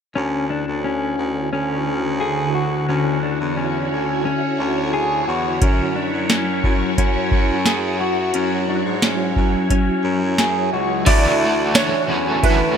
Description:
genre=dream pop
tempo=88 BPM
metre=4/4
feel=straight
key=unclear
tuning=A4 = 440 Hz
part: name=phased string machine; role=sustained chords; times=0.3-12.8 s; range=D3 to C#5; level=-23 LUFS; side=equal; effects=ensemble chorus, phaser
part: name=mellow electric guitar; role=arpeggios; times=0.2-12.8 s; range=C#4 to G#4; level=-22 LUFS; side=left 2 dB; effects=lush chorus, ping-pong delay
part: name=clear baritone saxophone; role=bass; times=0.2-12.8 s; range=C#2 to G#2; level=-25 LUFS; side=equal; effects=none
part: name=booming analog drum machine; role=drums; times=5.6-12.6 s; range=crash cymbal, hi-hat, kick drum, ride cymbal, snare drum, tambourine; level=-18 LUFS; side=equal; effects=overdrive
part: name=felt-muted upright piano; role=melody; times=11.1-12.8 s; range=B4 to D5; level=-20 LUFS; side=right 4 dB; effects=ensemble chorus, ping-pong delay
part: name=overdriven electric guitar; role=accompaniment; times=11.1-12.8 s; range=D3 to F#4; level=-22 LUFS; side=right 2 dB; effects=tremolo, ensemble chorus
room=moderate plate reverb, RT60 2.4 s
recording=bright 1980s-style digital production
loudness=-17 LUFS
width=side -7 dB against mid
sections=0.2-11.1 A section; 11.1-12.8 B section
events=none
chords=0.2 Dmaj9; 5.6 F#5; 11.1 Dmaj9

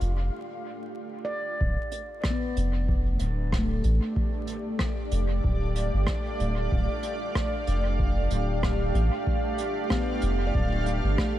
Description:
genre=ambient dub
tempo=94 BPM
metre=4/4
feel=swing 55% on 16ths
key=D dorian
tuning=A4 = 444 Hz
part: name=granular cloud pad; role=sustained chords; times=0.0-11.4 s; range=A3 to F5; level=-31 LUFS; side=right 1 dB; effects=built-in reverb
part: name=soft dub sub bass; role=bass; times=0.0-11.2 s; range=D1 to A1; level=-25 LUFS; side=equal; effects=none
part: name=vintage brush drum kit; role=drums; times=0.0-11.3 s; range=hi-hat, rim click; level=-35 LUFS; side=right 1 dB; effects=dub echo
part: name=handpan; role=arpeggios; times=1.2-5.6, 9.9-11.4 s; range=A3 to D5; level=-34 LUFS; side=left 2 dB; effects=dub echo
part: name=electronic kick drum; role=drums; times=1.6-11.3 s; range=none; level=-29 LUFS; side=equal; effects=none
room=small room ambience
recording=vinyl crackle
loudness=-24 LUFS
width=side -13 dB against mid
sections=0.0-1.6 A section; 1.6-11.4 B section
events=filter sweep on handpan 0.0-1.6; break 0.3-1.6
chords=0.0 Dm

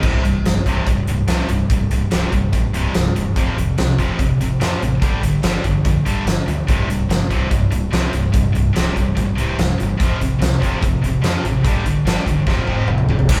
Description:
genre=hard rock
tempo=145 BPM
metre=4/4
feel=straight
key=unclear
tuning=A4 = 440 Hz
part: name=high-gain distorted guitar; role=riff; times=0.0-13.4 s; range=C2 to G3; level=-25 LUFS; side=equal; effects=distortion
part: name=scooped high-gain guitar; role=riff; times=0.0-13.4 s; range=C2 to G3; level=-24 LUFS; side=equal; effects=distortion
part: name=deep dub picked electric bass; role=bass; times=0.0-13.4 s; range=C1 to F2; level=-26 LUFS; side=equal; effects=none
part: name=huge arena drum kit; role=drums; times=0.0-13.4 s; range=crash cymbal, hi-hat, kick drum, snare drum, toms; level=-22 LUFS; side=equal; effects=none
room=light reverb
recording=band playing live in one room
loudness=-18 LUFS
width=mono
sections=0.0-13.3 A section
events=drum fill 12.5-13.3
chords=0.0 C5; 3.4 F5; 5.0 G5; 6.7 C5; 10.0 F5; 11.7 G5; 12.5 F5

